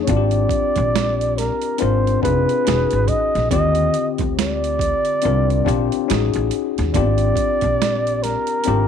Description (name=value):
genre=R&B, neo-soul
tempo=70 BPM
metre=4/4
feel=swing 59% on 16ths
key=unclear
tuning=A4 = 439 Hz
part: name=breathy flugelhorn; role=melody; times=0.0-8.9 s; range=Bb4 to D#5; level=-20 LUFS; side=right 2 dB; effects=slapback echo
part: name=tine electric piano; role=accompaniment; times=0.0-8.9 s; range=D3 to Bb4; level=-22 LUFS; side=left 16 dB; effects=none
part: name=upright bass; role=bass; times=0.0-8.9 s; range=E1 to Eb2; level=-21 LUFS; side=right 1 dB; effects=none
part: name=boom bap sampler-style drum kit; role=drums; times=0.1-8.9 s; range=hi-hat, kick drum, snare drum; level=-25 LUFS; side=right 5 dB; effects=overdrive
room=light reverb, studio reverb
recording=1960s-style stereo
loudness=-16 LUFS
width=side -8 dB against mid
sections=0.1-8.9 A section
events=none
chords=0.1 Abmaj9#11; 2.7 Emaj9; 3.5 Ebmaj9; 6.1 Amaj7#11; 6.9 Abmaj9#11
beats=| 0.08 0.94 1.79 2.65 | 3.51 4.37 5.22 6.08 | 6.94 7.79 8.65